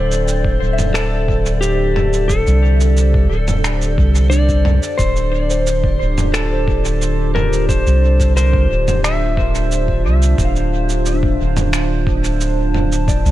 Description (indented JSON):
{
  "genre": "ambient dub",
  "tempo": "89 BPM",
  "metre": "4/4",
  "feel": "straight",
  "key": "D minor",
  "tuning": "A4 = 441 Hz",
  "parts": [
    { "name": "clean lap steel guitar", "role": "melody", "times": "0.0-10.0 s", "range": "G4 to E5", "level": "-22 LUFS", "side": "left 1 dB", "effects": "dub echo" },
    { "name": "warbly tape-like pad", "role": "sustained chords", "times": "0.0-13.3 s", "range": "D3 to A5", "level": "-23 LUFS", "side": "right 2 dB", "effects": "chorus, built-in reverb" },
    { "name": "soft synth bell", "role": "arpeggios", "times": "0.0-13.3 s", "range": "D4 to F5", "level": "-28 LUFS", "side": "left 4 dB", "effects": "chorus, phaser, dub echo" },
    { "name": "soft dub sub bass", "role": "bass", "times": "0.0-13.3 s", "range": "D1 to C2", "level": "-16 LUFS", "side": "equal", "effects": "none" },
    { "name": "lo-fi sampler-style drum kit", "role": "drums", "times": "0.1-13.3 s", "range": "finger snaps, shaker, toms", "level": "-24 LUFS", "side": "right 1 dB", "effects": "dub echo" },
    { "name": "electronic kick drum", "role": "drums", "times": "0.4-13.2 s", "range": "none", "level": "-19 LUFS", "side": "equal", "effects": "none" }
  ],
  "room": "digital ambience",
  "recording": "none",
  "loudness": "-13 LUFS",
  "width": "side -14 dB against mid",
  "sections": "0.0-13.3 A section",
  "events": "none",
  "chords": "0.0 Am/D; 5.0 Dm11"
}